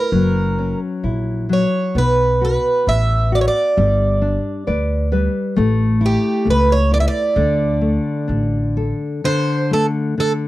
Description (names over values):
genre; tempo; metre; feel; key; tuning
fado-style ballad; 66 BPM; 2/4; rubato; D major; A4 = 440 Hz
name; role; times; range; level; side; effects
picked plugged-in twelve-string acoustic guitar; melody; 0.0-10.3 s; G4 to E5; -18 LUFS; right 2 dB; none
nylon-string guitar; accompaniment; 0.0-10.5 s; D3 to D5; -20 LUFS; left 3 dB; none
upright bass; bass; 0.1-8.9 s; F#1 to D2; -18 LUFS; equal; none
room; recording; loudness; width
little or no reverb; dry, close 1970s-style studio recording; -15 LUFS; side -16 dB against mid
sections
0.0-9.2 A section; 9.2-10.5 B section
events
nylon-string guitar fill 4.2-5.6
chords
0.1 F#7; 2.0 B5; 3.8 G; 5.6 A; 7.4 D5